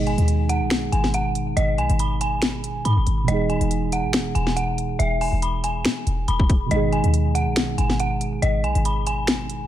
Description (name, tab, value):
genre	hip hop, trap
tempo	140 BPM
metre	4/4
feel	half-time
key	G# minor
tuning	A4 = 439 Hz
part	muted felt-like synth keys	accompaniment	0.0-9.7 s	B2 to G#4	-26 LUFS	right 4 dB	chorus, low-pass filter
part	short 808-style bass	bass	0.0-9.7 s	E1 to B2	-23 LUFS	equal	none
part	dark detuned synth bell	melody	0.1-9.7 s	D#5 to B5	-26 LUFS	equal	chorus, low-pass filter, ping-pong delay
part	trap drum kit	drums	0.1-9.6 s	finger snaps, hi-hat, kick drum, snare drum	-24 LUFS	left 1 dB	none
room	little or no reverb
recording	none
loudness	-19 LUFS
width	side -12 dB against mid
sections	0.0-9.7 A section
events	none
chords	0.0 G#m; 3.3 Emaj7; 6.7 G#m